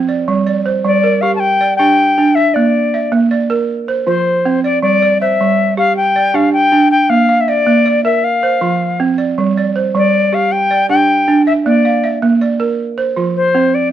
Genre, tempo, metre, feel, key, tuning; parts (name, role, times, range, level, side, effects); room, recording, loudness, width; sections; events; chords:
west african traditional; 106 BPM (dotted quarters); 12/8; straight; G dorian; A4 = 440 Hz
balafon; arpeggios; 0.0-13.9 s; F3 to F5; -14 LUFS; right 4 dB
bright reedy jazz flute; melody; 0.9-13.9 s; C5 to A5; -13 LUFS; left 4 dB
small room ambience; dry, close 1970s-style studio recording; -11 LUFS; side -11 dB against mid
0.0-13.9 A section
0.3 Gm; 2.6 Bb; 3.7 F5; 4.8 G5; 7.1 Bb; 8.2 F5; 9.4 G5; 11.7 Bb; 12.8 F5